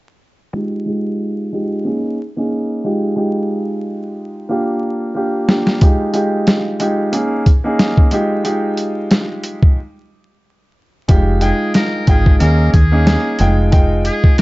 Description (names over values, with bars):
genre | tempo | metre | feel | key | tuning
hip hop, boom-bap hip-hop | 91 BPM | 4/4 | swing 55% on 16ths | F minor | A4 = 439 Hz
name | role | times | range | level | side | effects
warm concert grand piano | accompaniment | 0.5-14.4 s | Ab3 to G5 | -17 LUFS | equal | cassette tape, high-pass filter, low-pass filter
boom bap sampler-style drum kit | drums | 5.5-14.4 s | hi-hat, kick drum, snare drum | -12 LUFS | equal | none
deep dub fingered electric bass | bass | 11.1-14.1 s | F1 to Eb2 | -14 LUFS | equal | none
trumpet with metal mute | melody | 11.4-14.4 s | Ab4 to Bb4 | -23 LUFS | left 1 dB | high-pass filter, low-pass filter
room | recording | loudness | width
small room reverb | dark, warm production, vinyl crackle, nothing above 7.8 kHz | -13 LUFS | side -20 dB against mid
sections
0.5-11.1 A section; 11.1-14.4 B section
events
filter sweep on grand piano 0.5-11.1; drum fill 4.5-5.8; break 9.8-11.1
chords
0.5 Fm9; 1.9 Eb7sus4; 2.9 Fm9; 4.5 Gm7; 5.8 Fm9; 7.1 Eb7sus4; 8.1 Fm9; 9.8 N.C.; 11.1 Fm9; 12.4 Eb7sus4; 13.4 Fm9